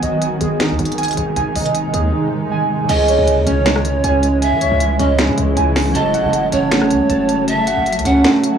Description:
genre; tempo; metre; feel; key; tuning
hip hop, trap; 157 BPM; 4/4; half-time; C# minor; A4 = 441 Hz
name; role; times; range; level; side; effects
granular cloud pad; sustained chords; 0.0-8.6 s; B#2 to F#4; -22 LUFS; equal; built-in reverb
warbly lo-fi synth keys; arpeggios; 0.0-8.6 s; G#3 to A5; -17 LUFS; right 2 dB; chorus, analog delay
hard-hitting 808-style bass; bass; 0.0-8.2 s; F#1 to E3; -21 LUFS; equal; none
trap drum kit; drums; 0.0-8.5 s; crash cymbal, finger snaps, hi-hat, rim click, snare drum; -21 LUFS; equal; none
concert harp; accompaniment; 2.8-8.6 s; C#3 to C#5; -25 LUFS; left 2 dB; none
breathy bright pan flute; second line; 2.9-8.2 s; C#5 to F#5; -19 LUFS; right 3 dB; analog delay
room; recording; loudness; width
digital ambience; dry, gritty hardware recording, small room ambience; -13 LUFS; side -8 dB against mid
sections
0.0-2.9 A section; 2.9-8.6 B section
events
kick muted 8.2-8.6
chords
0.0 G#; 2.9 C#m; 6.0 F#m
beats
0.22 0.60 0.98 | 1.36 1.75 2.13 2.51 | 2.89 3.27 3.66 4.04 | 4.42 4.80 5.19 5.57 | 5.95 6.33 6.71 7.10 | 7.48 7.86 8.24

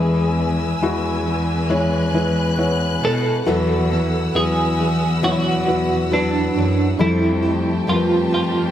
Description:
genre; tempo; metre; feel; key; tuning
pop ballad; 68 BPM; 4/4; straight; unclear; A4 = 441 Hz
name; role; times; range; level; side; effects
twelve-string electric guitar; melody; 0.0-8.7 s; D4 to A4; -22 LUFS; right 2 dB; tremolo, analog delay
felt-muted upright piano; accompaniment; 0.0-8.7 s; E3 to C#5; -22 LUFS; left 2 dB; analog delay
warm studio string section; sustained chords; 0.0-8.7 s; G4 to F#6; -27 LUFS; left 2 dB; none
clear studio cello section; bass; 0.0-8.7 s; E2 to B2; -21 LUFS; equal; none
picked steel-string acoustic guitar; arpeggios; 3.5-8.7 s; E2 to G4; -27 LUFS; right 2 dB; none
room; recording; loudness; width
light reverb, studio reverb; echo-heavy mix; -16 LUFS; side -11 dB against mid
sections
0.0-8.7 A section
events
none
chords
0.0 E; 3.5 Esus2; 7.0 Fadd9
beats
0.82 1.71 2.59 | 3.47 4.35 5.23 6.12 | 7.00 7.88

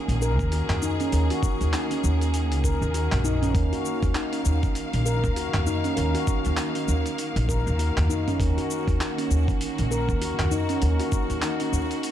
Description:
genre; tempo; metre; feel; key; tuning
organic downtempo; 99 BPM; 4/4; swing 59% on 16ths; Eb minor; A4 = 442 Hz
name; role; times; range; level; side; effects
bright studio string section; sustained chords; 0.0-12.1 s; Eb3 to F5; -33 LUFS; right 1 dB; vintage 12-bit sampler grit, sidechain pumping
handpan; arpeggios; 0.0-12.1 s; Db4 to Bb4; -27 LUFS; equal; tape echo
upright bass; bass; 0.1-11.9 s; Bb1 to Eb2; -24 LUFS; equal; none
dusty soul sampler-style drum kit; drums; 0.1-12.1 s; handclaps, hi-hat, shaker, toms; -31 LUFS; equal; overdrive
electronic kick drum; drums; 0.4-11.3 s; none; -26 LUFS; equal; overdrive
room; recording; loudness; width
light reverb; dark, warm production; -22 LUFS; side -11 dB against mid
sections
0.0-12.1 A section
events
none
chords
0.0 Ebm7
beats
0.52 | 1.13 1.73 2.34 2.94 | 3.55 4.16 4.76 5.37 | 5.97 6.58 7.19 7.79 | 8.40 9.01 9.61 10.22 | 10.82 11.43 12.04

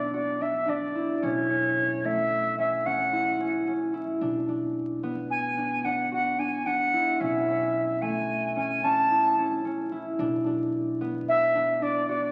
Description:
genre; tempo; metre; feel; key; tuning
contemporary instrumental, chamber music in an uneven meter; 221 BPM (eighths); 11/8; straight; B dorian; A4 = 438 Hz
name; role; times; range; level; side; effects
silver concert flute; melody; 0.0-12.3 s; C#5 to A5; -27 LUFS; equal; none
concert harp; arpeggios; 0.0-12.3 s; A3 to F#4; -31 LUFS; equal; none
upright bass; bass; 0.0-12.3 s; B1; -43 LUFS; equal; none
room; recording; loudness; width
wet recital hall reverb, RT60 1.4 s; very old 78 rpm record, vinyl crackle, lossy compression artefacts; -27 LUFS; mono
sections
0.0-12.3 A section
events
none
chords
0.0 Bm; 1.2 F#m7/B; 4.2 Bm; 7.2 A/B; 10.2 Bm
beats
0.14 0.41 0.68 0.95 | 1.23 1.50 1.77 2.04 2.31 2.58 2.86 3.13 3.40 3.67 3.94 | 4.22 4.49 4.76 5.03 5.30 5.58 5.85 6.12 6.39 6.66 6.93 | 7.21 7.48 7.75 8.02 8.29 8.56 8.83 9.11 9.38 9.65 9.92 | 10.19 10.46 10.73 11.00 11.28 11.55 11.82 12.09

